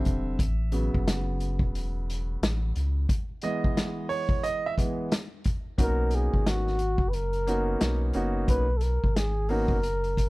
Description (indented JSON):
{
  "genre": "hip hop, jazz-hop",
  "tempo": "89 BPM",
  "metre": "4/4",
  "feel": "swing 60% on 16ths",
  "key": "B major",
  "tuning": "A4 = 440 Hz",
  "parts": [
    { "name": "clear concert grand piano", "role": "accompaniment", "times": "0.0-9.8 s", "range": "C#3 to E5", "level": "-31 LUFS", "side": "right 2 dB", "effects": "none" },
    { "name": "saturated sub bass", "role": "bass", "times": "0.0-10.3 s", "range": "E1 to C#2", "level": "-28 LUFS", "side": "equal", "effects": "none" },
    { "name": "vintage drum kit", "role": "drums", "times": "0.1-10.3 s", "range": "hi-hat, kick drum, snare drum", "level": "-28 LUFS", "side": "equal", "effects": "none" },
    { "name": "trumpet with bucket mute", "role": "melody", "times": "5.8-10.3 s", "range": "F#4 to B4", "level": "-30 LUFS", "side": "equal", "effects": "none" }
  ],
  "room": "small room ambience",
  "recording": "none",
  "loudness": "-25 LUFS",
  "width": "side -21 dB against mid",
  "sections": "0.0-5.8 A section; 5.8-10.3 B section",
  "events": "grand piano solo 0.0-5.8",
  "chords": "0.4 A6; 3.1 Emaj7; 5.8 Bmaj9"
}